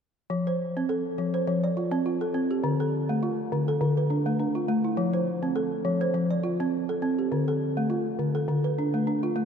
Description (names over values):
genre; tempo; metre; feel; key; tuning
west african traditional; 102 BPM; 4/4; swing 54% on 16ths; F lydian; A4 = 440 Hz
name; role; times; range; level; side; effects
balafon; arpeggios; 0.3-9.4 s; D3 to D5; -24 LUFS; equal; none
room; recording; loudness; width
wet cathedral reverb, RT60 5.5 s; dreamy mix soaked in reverb; -24 LUFS; side -7 dB against mid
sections
0.3-9.4 A section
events
none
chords
0.3 F; 2.6 Dm; 5.0 F; 7.3 Dm